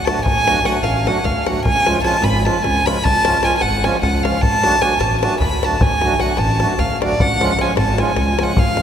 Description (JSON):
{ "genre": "balkan folk, Balkan wedding band", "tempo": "303 BPM (eighths)", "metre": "7/8", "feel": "straight", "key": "C# phrygian dominant", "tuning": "A4 = 440 Hz", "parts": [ { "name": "warm violin", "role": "melody", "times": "0.0-8.8 s", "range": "D5 to B5", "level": "-18 LUFS", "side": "right 1 dB", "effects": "none" }, { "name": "accordion", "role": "accompaniment", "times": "0.0-8.8 s", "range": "E#3 to F#4", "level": "-22 LUFS", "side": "right 2 dB", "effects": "none" }, { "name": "upright bass", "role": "bass", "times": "0.0-8.8 s", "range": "G#1 to D2", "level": "-21 LUFS", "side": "equal", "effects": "none" }, { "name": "davul", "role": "percussion", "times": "0.1-8.8 s", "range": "none", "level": "-20 LUFS", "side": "left 2 dB", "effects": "none" } ], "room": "wet cathedral reverb, RT60 4.9 s", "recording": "recorded in a church or concert hall", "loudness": "-14 LUFS", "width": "side -8 dB against mid", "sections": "0.0-8.8 A section", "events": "none", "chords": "0.0 D; 1.6 C#; 4.4 D; 7.2 C#" }